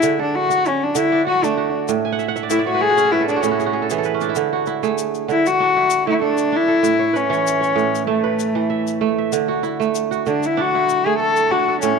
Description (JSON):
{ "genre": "west african traditional, West African string and xylophone music", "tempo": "97 BPM", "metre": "4/4", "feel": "swing 54% on 16ths", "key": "D lydian", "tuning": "A4 = 440 Hz", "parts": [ { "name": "rich cello", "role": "melody", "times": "0.0-12.0 s", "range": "A3 to A4", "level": "-18 LUFS", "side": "left 4 dB", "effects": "tape echo" }, { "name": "kora", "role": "arpeggios", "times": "0.0-12.0 s", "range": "A2 to G#5", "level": "-20 LUFS", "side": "right 9 dB", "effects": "none" }, { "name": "tube shaker", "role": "percussion", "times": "0.0-12.0 s", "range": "none", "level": "-31 LUFS", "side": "left 14 dB", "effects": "none" } ], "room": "light reverb, studio ambience", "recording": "1960s-style stereo with parts hard left and right", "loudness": "-16 LUFS", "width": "side -5 dB against mid", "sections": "0.0-4.4 A section; 4.4-12.0 B section", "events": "cello solo 0.0-4.4; kora fill 2.0-4.4", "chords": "0.0 D; 1.9 A; 4.4 D; 6.8 A; 9.3 D", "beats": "0.03 0.65 1.26 | 1.88 2.50 3.12 3.73 | 4.35 4.97 5.59 6.21 | 6.83 7.46 8.08 8.70 | 9.32 9.95 10.57 11.19 | 11.82" }